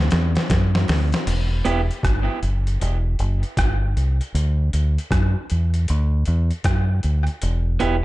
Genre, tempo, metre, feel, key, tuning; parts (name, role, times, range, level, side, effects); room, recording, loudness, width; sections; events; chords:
dub reggae; 78 BPM; 4/4; swing 64% on 16ths; E minor; A4 = 444 Hz
deep dub fingered electric bass; bass; 0.0-8.0 s; E1 to F#2; -19 LUFS; equal
boom bap sampler-style drum kit; drums; 0.1-8.0 s; crash cymbal, hi-hat, kick drum, rim click, snare drum; -24 LUFS; equal; overdrive
bongos; percussion; 0.9-1.1 s; barely audible
electric guitar at the edge of break-up; accompaniment; 1.6-1.8, 7.8-8.0 s; B3 to G4; -24 LUFS; right 4 dB; high-pass filter, tape echo
little or no reverb; dark, warm production, nothing above 10.8 kHz; -18 LUFS; side -18 dB against mid
0.0-1.3 A section; 1.3-8.0 B section
break 0.0-1.3, 1.3-7.4; drum fill 0.0-1.3
0.0 D; 1.3 Em; 4.3 D; 7.4 Em